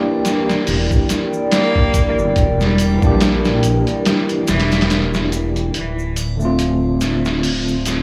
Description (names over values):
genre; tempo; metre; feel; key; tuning
trip hop; 71 BPM; 4/4; swing 57% on 16ths; unclear; A4 = 440 Hz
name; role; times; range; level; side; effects
tine electric piano; accompaniment; 0.0-8.0 s; D3 to G4; -23 LUFS; equal; tremolo, tape echo
warbly tape-like pad; sustained chords; 0.0-8.0 s; E4 to A5; -25 LUFS; equal; chorus, built-in reverb
trip hop sampler-style drum kit; drums; 0.2-8.0 s; hi-hat, kick drum, snare drum; -21 LUFS; equal; high-pass filter on hats, high-pass filter on kick, high-pass filter on snare, high-pass filter on room
tube shaker and triangle; percussion; 0.3-8.0 s; none; -38 LUFS; equal; none
dark detuned saw bass; bass; 0.7-8.0 s; D1 to Bb1; -23 LUFS; equal; none
clear cello; melody; 1.5-4.9 s; E3 to Bb3; -26 LUFS; equal; tape echo
room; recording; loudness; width
light reverb; blown-out, overdriven recording, overdrive, small room ambience; -17 LUFS; mono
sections
0.0-5.7 A section; 5.7-8.0 B section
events
break 4.1-5.7; filter sweep on ambient pad 5.7-8.0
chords
0.0 Em7b5; 5.7 Dm7